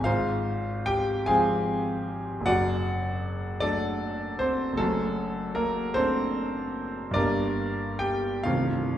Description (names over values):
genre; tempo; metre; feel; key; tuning
classical, romantic nocturne for solo piano; 51 BPM (dotted quarters); 6/8; uneven beats, rubato; unclear; A4 = 440 Hz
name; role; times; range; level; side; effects
warm concert grand piano; solo; 0.0-9.0 s; C1 to Ab5; -25 LUFS; equal; none
room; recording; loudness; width
wet recital hall reverb, RT60 1.5 s; heard from further back in the room; -25 LUFS; side -11 dB against mid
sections
0.0-9.0 A section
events
none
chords
0.1 Fm/Ab; 2.5 D/F#; 4.8 D7/F#; 7.2 Gm; 8.5 Adim/C